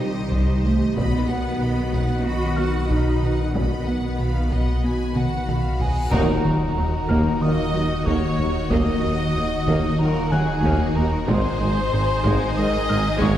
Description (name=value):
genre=cinematic, hybrid orchestral and electronic film score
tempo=93 BPM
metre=4/4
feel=straight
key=Eb minor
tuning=A4 = 440 Hz
part: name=bright symphonic violin section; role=melody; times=0.0-13.4 s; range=Gb4 to B5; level=-35 LUFS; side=left 4 dB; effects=none
part: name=clear symphonic violin section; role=second line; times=0.0-13.4 s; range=F#4 to Ab5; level=-31 LUFS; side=left 2 dB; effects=none
part: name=rich studio viola section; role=accompaniment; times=0.0-13.4 s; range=Eb3 to B4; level=-29 LUFS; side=left 1 dB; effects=none
part: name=ethereal airy pad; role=sustained chords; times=0.1-13.4 s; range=Eb3 to Eb5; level=-29 LUFS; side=left 1 dB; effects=ensemble chorus, built-in reverb
part: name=mellow French horn section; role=sustained chords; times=0.0-12.8 s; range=Eb3 to G4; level=-33 LUFS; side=left 2 dB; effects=none
part: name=rubbery square bass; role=riff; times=0.0-13.4 s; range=C2 to B3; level=-26 LUFS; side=right 1 dB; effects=none
part: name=clear symphonic double bass section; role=bass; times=0.0-13.3 s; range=Ab1 to Eb2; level=-29 LUFS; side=right 1 dB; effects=none
part: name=sub bass with octave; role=bass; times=0.0-13.4 s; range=Eb1 to C2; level=-28 LUFS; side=equal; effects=none
part: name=warm studio cello section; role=bass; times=0.0-13.3 s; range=Eb2 to F#4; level=-28 LUFS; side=right 1 dB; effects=none
part: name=felt-muted upright piano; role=texture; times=0.0-13.4 s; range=Gb5 to Gb6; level=-38 LUFS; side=left 2 dB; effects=none
part: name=taiko ensemble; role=drums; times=0.3-13.4 s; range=none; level=-29 LUFS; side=equal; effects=none
part: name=reverse cymbal and impact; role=sound effects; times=6.0-8.7 s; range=none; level=-32 LUFS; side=left 1 dB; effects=none
part: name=hollow clarinet-like synth lead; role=melody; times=5.2-13.4 s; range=F#5 to Eb6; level=-30 LUFS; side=right 2 dB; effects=chorus
part: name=warm trombone section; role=sustained chords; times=6.1-12.8 s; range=Ab2 to Eb3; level=-33 LUFS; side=right 2 dB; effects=none
part: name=clear tuba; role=bass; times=6.1-13.3 s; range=Ab1 to Eb2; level=-28 LUFS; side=right 1 dB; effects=none
room=wet concert hall reverb, RT60 2.0 s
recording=heard from further back in the room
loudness=-19 LUFS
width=side -11 dB against mid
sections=0.0-6.1 A section; 6.1-13.4 A section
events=drum fill 5.2-6.1; reverse cymbal 6.0; band accent 6.1-6.8; impact 6.1-8.7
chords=0.0 Cm; 1.0 B; 6.1 Ebm; 11.3 Ab